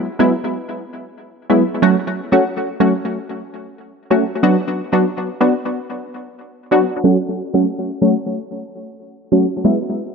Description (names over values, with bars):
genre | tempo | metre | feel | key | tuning
dancehall | 92 BPM | 4/4 | straight | F# minor | A4 = 443 Hz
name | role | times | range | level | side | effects
punchy chord stab | solo | 0.2-9.8 s | F#3 to F#4 | -15 LUFS | equal | chorus, tape echo
room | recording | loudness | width
moderate plate reverb, RT60 2.5 s | echo-heavy mix, low-pass filter | -15 LUFS | side -5 dB against mid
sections
0.0-7.0 A section; 7.0-10.1 B section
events
filter sweep 7.0-10.1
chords
0.0 Eadd9; 1.8 F#m; 4.4 Bm; 7.0 F#m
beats
0.52 1.17 | 1.82 2.48 3.13 3.78 | 4.43 5.08 5.74 6.39 | 7.04 7.69 8.35 9.00 | 9.65